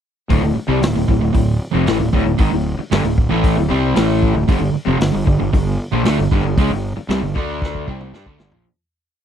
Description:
classic rock; 115 BPM; 4/4; straight; D minor; A4 = 440 Hz
overdriven semi-hollow guitar; riff; 0.3-8.7 s; D2 to D4; -20 LUFS; right 9 dB
raw garage guitar; riff; 0.3-8.6 s; D2 to D4; -21 LUFS; left 13 dB; overdrive
fuzz fingered electric bass; bass; 0.3-8.6 s; D1 to G2; -21 LUFS; equal; overdrive
vintage drum kit; drums; 0.3-8.6 s; hi-hat, kick drum, snare drum, toms; -19 LUFS; equal
little or no reverb; dry, close 1970s-style studio recording; -15 LUFS; side -9 dB against mid
0.3-8.7 riff
fade-out 6.6-8.7; drum fill 7.6-8.7
0.3 D5; 4.5 G5; 7.4 D5; 7.9 G5
| 0.29 0.82 1.34 1.86 | 2.39 2.91 3.44 3.96 | 4.48 5.01 5.53 6.05 | 6.57 7.09 7.62 8.13

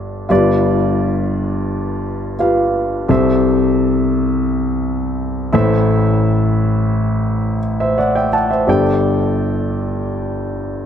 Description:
pop; 86 BPM; 4/4; straight; G major; A4 = 436 Hz
dark grand piano; solo; 0.0-10.9 s; G1 to A5; -14 LUFS; equal
light reverb; -14 LUFS; side -8 dB against mid
0.0-10.9 A section
0.3 G7; 3.1 C6; 5.5 Am; 8.7 Gsus2
| 0.30 1.00 1.70 2.39 | 3.09 3.79 4.49 5.18 | 5.88 6.58 7.28 7.97 | 8.67 9.37 10.07 10.77

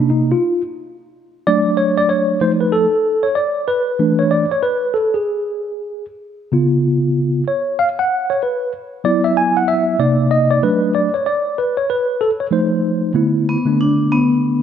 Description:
hip hop; 95 BPM; 4/4; swing 62% on 16ths; A4 = 438 Hz
mellow tine electric piano; accompaniment; 0.0-14.6 s; C3 to G#5; -15 LUFS; equal; medium stereo tremolo
vibraphone with medium mallets; melody; 13.5-14.6 s; B3 to D4; -15 LUFS; left 2 dB
moderate plate reverb, RT60 2.3 s; -14 LUFS; side -8 dB against mid
0.0-13.2 A section; 13.2-14.6 B section
tine electric piano solo 0.0-13.2
0.0 Cm7; 0.5 Dmaj7; 2.4 F7; 3.0 E7sus4; 5.6 C#7; 8.1 F#7sus4; 10.0 Cm9; 10.6 F#madd11; 12.5 F7; 13.2 E7sus4
| 0.52 1.15 1.79 2.42 | 3.05 3.68 4.31 4.94 | 5.58 6.21 6.84 7.47 | 8.10 8.73 9.37 10.00 | 10.63 11.26 11.89 12.52 | 13.15 13.79 14.42

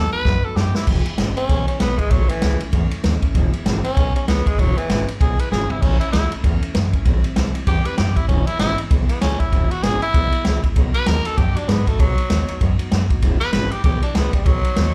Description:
rockabilly; 194 BPM; 4/4; swing 60% on 8ths; E major; A4 = 439 Hz
growling tenor saxophone; melody; 0.0-14.9 s; E3 to B4; -26 LUFS; equal; slapback echo
picked steel-string acoustic guitar; accompaniment; 0.0-14.9 s; E2 to F#4; -32 LUFS; equal; slapback echo
upright bass; bass; 0.0-14.9 s; E1 to G#2; -23 LUFS; equal
vintage drum kit; drums; 0.3-14.9 s; crash cymbal, kick drum, ride cymbal, snare drum, toms; -22 LUFS; equal
little or no reverb; live gig heard through the venue's PA, club reverb; -19 LUFS; mono
0.9-14.9 A section
drum fill 0.3-0.9, 5.5-5.8; tenor saxophone solo 0.9-14.9
0.0 B; 0.9 E; 2.1 A; 3.3 E; 5.8 A; 7.1 Am7; 8.3 E; 10.8 B; 13.2 E
0.26 0.56 | 0.87 1.18 1.49 1.80 | 2.11 2.42 2.73 3.04 | 3.35 3.66 3.97 4.28 | 4.59 4.89 5.20 5.51 | 5.82 6.13 6.44 6.75 | 7.06 7.37 7.67 7.98 | 8.29 8.60 8.91 9.22 | 9.53 9.84 10.14 10.45 | 10.76 11.07 11.38 11.69 | 11.99 12.30 12.61 12.92 | 13.23 13.54 13.84 14.15 | 14.46 14.77

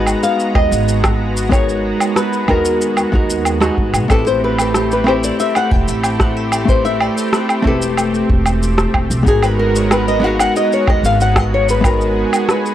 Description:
sunset chillout; 93 BPM; 4/4; straight; A4 = 440 Hz
flamenco guitar; melody; 0.0-12.7 s; G4 to G5; -18 LUFS; left 2 dB; tape echo
hollow-body jazz guitar; accompaniment; 0.0-12.7 s; G#3 to B4; -19 LUFS; moving between left 3 dB and right 6 dB; auto-pan, vintage 12-bit sampler grit, tape echo
lush unison pad; sustained chords; 0.0-12.7 s; G#3 to A#5; -23 LUFS; equal; chorus
upright bass; bass; 0.0-12.2 s; E1 to G#2; -20 LUFS; equal
electronic woodblock, shaker and rim click; drums; 0.1-12.7 s; -19 LUFS; right 1 dB
electronic kick drum; drums; 0.6-12.0 s; -16 LUFS; equal
digital ambience; dry, gritty hardware recording; -13 LUFS; side -12 dB against mid
0.0-12.7 A section
0.0 G#m9; 4.1 Am9; 9.3 G#m9
0.23 0.88 | 1.52 2.17 2.81 3.46 | 4.10 4.75 5.39 6.04 | 6.68 7.33 7.97 8.62 | 9.26 9.91 10.55 11.20 | 11.84 12.49

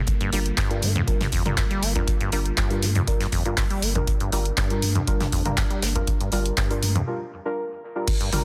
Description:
acid house; 120 BPM; 4/4; straight; G minor; A4 = 440 Hz
warbly tape-like pad; sustained chords; 0.0-8.4 s; D3 to F4; -39 LUFS; equal; chorus, built-in reverb, sidechain pumping
deep acid bass; riff; 0.0-8.4 s; F2 to Bb3; -31 LUFS; equal; tube saturation, vintage 12-bit sampler grit, dub echo
electronic kick drum; drums; 0.1-8.2 s; -28 LUFS; equal
punchy analog drum machine; drums; 0.1-8.4 s; crash cymbal, handclaps, hi-hat, toms; -30 LUFS; equal; overdrive
tight funk drum kit; drums; 0.1-8.4 s; hi-hat, snare drum; -38 LUFS; equal
deep mellow chord stab; stabs; 0.3-8.4 s; G3 to Bb4; -33 LUFS; equal; chorus, dub echo
round analog bass; bass; 0.3-8.4 s; G1 to G2; -28 LUFS; equal; sidechain pumping
little or no reverb; dense, heavily limited modern master; -24 LUFS; mono
0.0-8.1 A section
break 7.1-8.1
0.0 Gm7
| 0.08 0.58 1.08 1.58 | 2.08 2.58 3.08 3.58 | 4.08 4.58 5.08 5.58 | 6.08 6.58 7.08 7.58 | 8.08

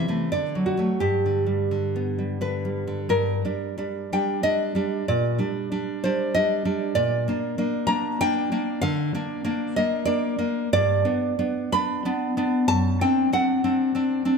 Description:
romantic piece for solo classical guitar; 84-98 BPM; 3/4; rubato; G major, G minor from 3.1 s, G major from 10.7 s; A4 = 445 Hz
nylon-string guitar; solo; 0.0-14.4 s; F#2 to B5; -22 LUFS; equal
moderate concert hall reverb, RT60 2.0 s; -22 LUFS; side -5 dB against mid
0.0-3.1 A section; 3.1-14.4 B section
0.3 D; 1.0 G; 3.1 Gm; 5.1 Gm/Bb; 7.0 Bb; 8.8 Bb/D; 10.7 G; 12.7 D7/F#
0.31 | 1.00 1.71 2.41 | 3.10 3.77 4.43 | 5.08 5.72 6.35 | 6.98 7.59 8.21 | 8.83 9.46 10.09 | 10.72 11.38 12.05 | 12.67 13.32 13.94

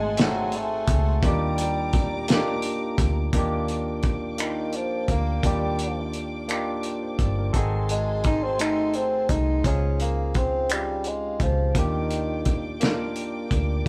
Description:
slow six-eight R&B; 57 BPM (dotted quarters); 6/8; straight; Eb major; A4 = 440 Hz
warm bassoon; melody; 0.0-12.8 s; Eb3 to Eb4; -30 LUFS; equal
barky tine electric piano; accompaniment; 0.0-13.9 s; A3 to D5; -32 LUFS; equal
dark studio string section; sustained chords; 0.0-13.9 s; F4 to D6; -40 LUFS; equal
vintage muted fingered electric bass; bass; 0.0-13.8 s; G1 to Eb2; -30 LUFS; equal
cloth-damped thuddy drum kit; drums; 0.2-13.9 s; finger snaps, hi-hat, kick drum, snare drum; -27 LUFS; equal
moderate studio reverb, RT60 0.7 s; band playing live in one room; -25 LUFS; mono
0.0-3.3 A section; 3.3-13.9 B section
bassoon solo 3.3-13.9
0.0 Ab7b9; 1.2 Ebmaj7; 3.3 Ebmaj9; 7.5 Ab7b9; 9.6 Dbmaj7; 11.8 Ebmaj9
0.17 | 1.23 2.28 | 3.33 4.38 | 5.44 6.49 | 7.54 8.60 | 9.65 10.70 | 11.75 12.81 | 13.86

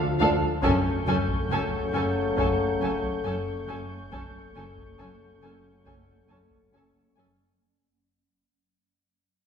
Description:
cinematic, suspense film score; 69 BPM; 4/4; straight; A4 = 440 Hz
mellow French horn section; sustained chords; 0.0-7.2 s; A3 to A4; -32 LUFS; left 6 dB
warm trombone section; sustained chords; 0.0-7.2 s; C#3 to F#3; -33 LUFS; right 2 dB
muted studio cello section; riff; 0.0-7.4 s; F#2 to D4; -36 LUFS; right 2 dB
swarming drone; drone; 0.0-7.6 s; F#1 to D2; -37 LUFS; equal; built-in reverb
muted studio violin section; melody; 0.2-7.2 s; F5 to G#5; -35 LUFS; left 3 dB
muted studio violin section; second line; 0.2-7.3 s; A4; -32 LUFS; right 2 dB
muted studio viola section; accompaniment; 0.2-7.3 s; C#4 to D4; -33 LUFS; left 1 dB
muted studio cello section; bass; 0.2-7.2 s; D2 to F#2; -33 LUFS; right 2 dB
muted studio double bass section; bass; 0.2-7.2 s; F#1 to D2; -33 LUFS; right 1 dB
taiko ensemble; drums; 0.6-7.3 s; -36 LUFS; equal
muted symphonic violin section; texture; 0.6-7.1 s; C#6 to G6; -40 LUFS; equal
wet scoring stage reverb, RT60 1.6 s; heard from further back in the room; -23 LUFS; side -7 dB against mid
0.0-7.6 A section
fade-out 0.0-7.6
0.0 Dm; 0.6 F#m
| 0.64 1.51 2.38 3.25 | 4.12 4.99 5.86 6.73

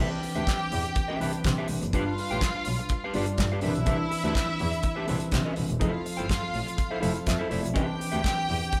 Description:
disco; 124 BPM; 4/4; straight; C major; A4 = 440 Hz
rich studio string section; second line; 0.0-8.8 s; E4 to G5; -35 LUFS; equal
mellow tine electric piano; accompaniment; 0.0-8.8 s; E3 to F5; -35 LUFS; equal
semi-hollow electric guitar; accompaniment; 0.0-8.8 s; D4 to G5; -36 LUFS; equal
rich double bass; bass; 0.0-8.6 s; E1 to C3; -34 LUFS; equal
damped 70s drum kit; drums; 0.2-8.8 s; handclaps, hi-hat, kick drum, snare drum; -32 LUFS; equal
wet studio reverb, RT60 0.9 s; band playing live in one room; -28 LUFS; mono
0.0-8.8 A section
tine electric piano fill 6.8-7.8
0.0 Cmaj9; 1.9 G7; 3.6 Cmaj9; 5.8 Fmaj7; 7.8 Cmaj9
0.47 0.95 1.44 | 1.93 2.41 2.90 3.38 | 3.87 4.35 4.84 5.33 | 5.81 6.30 6.78 7.27 | 7.76 8.24 8.73

